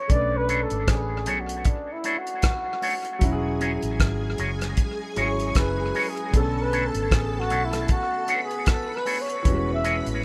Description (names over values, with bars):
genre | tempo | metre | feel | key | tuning
lovers rock reggae | 77 BPM | 4/4 | swing 57% on 16ths | E mixolydian | A4 = 440 Hz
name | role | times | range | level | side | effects
breathy flugelhorn | melody | 0.0-10.1 s | D4 to E5 | -31 LUFS | equal | tape echo
clear grand piano | accompaniment | 0.0-10.2 s | D3 to B4 | -34 LUFS | equal | none
vintage muted fingered electric bass | bass | 0.1-10.2 s | E1 to B1 | -31 LUFS | equal | none
cloth-damped thuddy drum kit | drums | 0.1-10.2 s | hi-hat, kick drum, rim click | -26 LUFS | equal | none
electric guitar with an envelope filter | stabs | 0.5-10.0 s | A3 to C#5 | -32 LUFS | equal | tape echo
string machine, full ensemble | second line | 3.2-10.2 s | G#4 to B5 | -37 LUFS | equal | ensemble chorus
room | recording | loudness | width
light reverb, small room ambience | rough home demo mix, lossy compression artefacts | -25 LUFS | mono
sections
0.0-10.2 A section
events
flugelhorn solo 0.0-10.2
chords
0.1 Bm9; 3.2 E69; 6.3 Bm9; 9.5 E69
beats
| 0.10 0.88 1.66 2.44 | 3.22 4.00 4.78 5.56 | 6.34 7.12 7.89 8.68 | 9.46 10.23